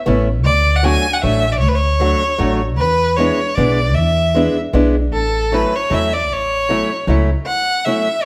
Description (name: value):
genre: musette waltz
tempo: 154 BPM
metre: 3/4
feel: straight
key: A major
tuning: A4 = 440 Hz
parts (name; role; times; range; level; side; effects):
- picked acoustic archtop guitar; accompaniment; 0.1-8.1 s; F#3 to F#4; -21 LUFS; equal; none
- upright bass; bass; 0.1-7.3 s; A1 to E2; -20 LUFS; equal; none
- clear violin; melody; 0.4-8.2 s; A4 to G#5; -20 LUFS; equal; none
room: moderate recital hall reverb, RT60 1.4 s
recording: none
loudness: -16 LUFS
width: mono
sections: 0.0-7.5 A section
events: none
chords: 0.5 D; 2.8 E7; 5.1 A6; 7.5 F#m7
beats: 0.07 | 0.45 0.84 1.23 | 1.62 2.01 2.40 | 2.79 3.19 3.58 | 3.96 4.35 4.74 | 5.13 5.52 5.91 | 6.29 6.68 7.08 | 7.47 7.86